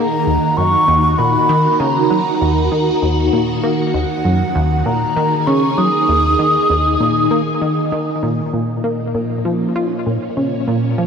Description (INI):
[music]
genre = ambient, sequencer-driven space music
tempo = 98 BPM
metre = 4/4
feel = straight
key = Eb minor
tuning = A4 = 440 Hz
[part]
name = mellow hollow concert flute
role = melody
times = 0.0-7.9 s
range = Gb5 to Eb6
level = -17 LUFS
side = equal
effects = ping-pong delay
[part]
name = phased string machine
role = sustained chords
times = 0.0-11.1 s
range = Bb2 to Ab4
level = -18 LUFS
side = equal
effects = ensemble chorus, phaser
[part]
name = plucky analog bass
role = riff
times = 0.0-11.1 s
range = Eb2 to F4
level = -18 LUFS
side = equal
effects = wide subtle chorus, ping-pong delay
[sound]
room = wet plate reverb, RT60 3.2 s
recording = echo-heavy mix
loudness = -14 LUFS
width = side -6 dB against mid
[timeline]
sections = 0.0-8.5 A section; 8.5-11.1 B section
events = none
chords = 0.0 Ebm7; 8.5 Bbm